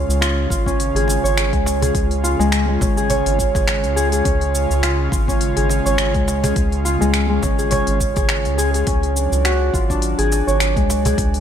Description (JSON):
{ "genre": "organic downtempo", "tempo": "104 BPM", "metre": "4/4", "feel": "swing 56% on 16ths", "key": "C# major", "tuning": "A4 = 440 Hz", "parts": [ { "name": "airy breathy pad", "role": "sustained chords", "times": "0.0-11.4 s", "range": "C#3 to E#4", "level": "-26 LUFS", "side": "equal", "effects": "chorus, sidechain pumping" }, { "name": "Celtic harp", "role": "arpeggios", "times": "0.0-11.4 s", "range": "G#3 to C#5", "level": "-20 LUFS", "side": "equal", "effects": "ping-pong delay" }, { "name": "round analog bass", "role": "bass", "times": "0.0-11.4 s", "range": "G#1 to C#2", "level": "-20 LUFS", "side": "equal", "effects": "sidechain pumping" }, { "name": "organic electronic drum kit", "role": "drums", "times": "0.1-11.4 s", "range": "finger snaps, hi-hat, shaker", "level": "-24 LUFS", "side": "left 1 dB", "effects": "none" }, { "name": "electronic kick drum", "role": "drums", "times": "0.5-11.3 s", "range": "none", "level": "-21 LUFS", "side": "equal", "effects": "none" }, { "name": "cajon", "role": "percussion", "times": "1.1-11.2 s", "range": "none", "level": "-25 LUFS", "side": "equal", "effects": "none" } ], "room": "light reverb", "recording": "none", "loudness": "-15 LUFS", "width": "side -9 dB against mid", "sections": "0.0-11.4 A section", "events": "none", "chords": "0.0 C#; 8.9 D" }